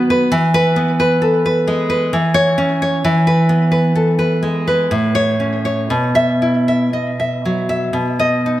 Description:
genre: romantic piece for solo classical guitar.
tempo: 58-67 BPM.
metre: 3/4.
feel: rubato.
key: E major.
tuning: A4 = 440 Hz.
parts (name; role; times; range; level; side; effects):
nylon-string guitar; solo; 0.0-8.6 s; A2 to E5; -13 LUFS; equal; tape echo.
room: wet recital hall reverb, RT60 1.6 s.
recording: none.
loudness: -13 LUFS.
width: side -14 dB against mid.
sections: 0.0-8.6 A section.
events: none.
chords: 0.3 E; 2.1 C#m/E; 3.0 E; 4.9 A; 5.9 Bsus4; 8.0 B.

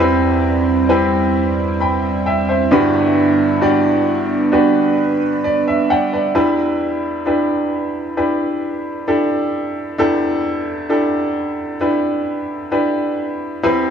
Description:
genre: pop ballad.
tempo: 66 BPM.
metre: 4/4.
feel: straight.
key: E minor.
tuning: A4 = 444 Hz.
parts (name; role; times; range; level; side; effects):
bright upright piano; accompaniment; 0.0-13.9 s; G1 to B5; -16 LUFS; left 1 dB; none.
chorused pulse-width pad; sustained chords; 0.0-6.3 s; E2 to D5; -17 LUFS; right 4 dB; none.
room: moderate lush hall reverb, RT60 2.9 s.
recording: none.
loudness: -15 LUFS.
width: side -7 dB against mid.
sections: 0.0-6.4 A section; 6.4-13.9 B section.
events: upright piano fill 5.0-6.4.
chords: 0.0 Cmaj7/E; 2.7 Gmaj7; 6.4 Em7.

